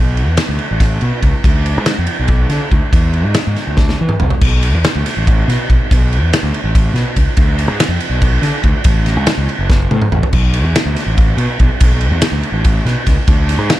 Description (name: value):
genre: math rock and midwest emo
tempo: 284 BPM (eighths)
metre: 7/8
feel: straight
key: unclear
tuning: A4 = 435 Hz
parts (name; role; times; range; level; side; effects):
- fuzz fingered electric bass; bass; 0.0-13.7 s; F#1 to E3; -15 LUFS; equal; overdrive
- loose indie drum kit; drums; 0.2-13.8 s; crash cymbal, kick drum, ride cymbal, snare drum, toms; -14 LUFS; equal; none
room: little or no reverb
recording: dark, warm production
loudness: -11 LUFS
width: side -15 dB against mid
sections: 0.0-4.4 A section; 4.4-13.8 B section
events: drum fill 3.8-4.4, 9.7-10.3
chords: none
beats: 0.17 0.38 0.59 0.81 1.02 1.23 | 1.44 1.66 1.87 2.08 2.29 2.51 2.72 | 2.93 3.14 3.35 3.57 3.78 3.99 4.20 | 4.42 4.63 4.84 5.05 5.26 5.47 5.68 | 5.90 6.11 6.32 6.53 6.74 6.95 7.17 | 7.38 7.59 7.80 8.01 8.22 8.43 8.64 | 8.85 9.06 9.28 9.49 9.70 9.91 10.12 | 10.33 10.54 10.75 10.96 11.18 11.39 11.60 | 11.81 12.02 12.23 12.44 12.65 12.86 13.07 | 13.28 13.49 13.71